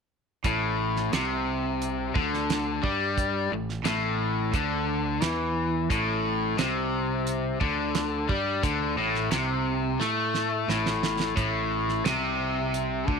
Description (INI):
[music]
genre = classic rock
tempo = 88 BPM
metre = 4/4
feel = straight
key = A minor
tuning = A4 = 440 Hz
[part]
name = overdriven semi-hollow guitar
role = riff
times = 0.4-13.2 s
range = A2 to A3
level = -30 LUFS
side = right 12 dB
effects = none
[part]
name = modern bright picked electric bass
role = bass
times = 0.4-13.2 s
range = A1 to A2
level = -33 LUFS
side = right 1 dB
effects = none
[part]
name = damped 70s drum kit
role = drums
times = 0.4-13.2 s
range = hi-hat, kick drum, snare drum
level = -29 LUFS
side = right 4 dB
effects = none
[part]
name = overdriven electric guitar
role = riff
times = 0.5-13.2 s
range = A2 to A3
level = -28 LUFS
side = left 12 dB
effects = none
[sound]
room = little or no reverb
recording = 1960s-style stereo with parts hard left and right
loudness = -24 LUFS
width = side -5 dB against mid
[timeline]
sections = 0.4-13.2 A section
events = drum fill 10.0-11.4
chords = 0.4 Am